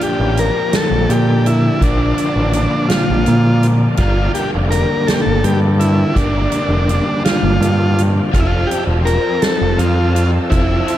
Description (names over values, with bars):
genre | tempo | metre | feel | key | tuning
psychedelic rock | 55 BPM (dotted quarters) | 6/8 | straight | G dorian | A4 = 441 Hz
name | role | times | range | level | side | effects
overdriven combo organ | melody | 0.0-11.0 s | D4 to Bb4 | -19 LUFS | equal | dub echo
string machine, violas | sustained chords | 0.0-11.0 s | Bb3 to E6 | -28 LUFS | right 2 dB | ensemble chorus
overdriven electric guitar | riff | 0.0-11.0 s | G2 to Bb4 | -18 LUFS | left 1 dB | rotary speaker
soft-mallet drum kit | drums | 0.0-11.0 s | hi-hat, kick drum, snare drum | -21 LUFS | right 1 dB | none
growling picked electric bass | bass | 0.2-10.8 s | E1 to Bb2 | -16 LUFS | equal | overdrive
room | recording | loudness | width
small room ambience | echo-heavy mix | -12 LUFS | side -12 dB against mid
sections
0.0-11.0 A section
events
none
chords
0.0 Bbmaj7; 4.0 Gm7; 8.3 Fmaj7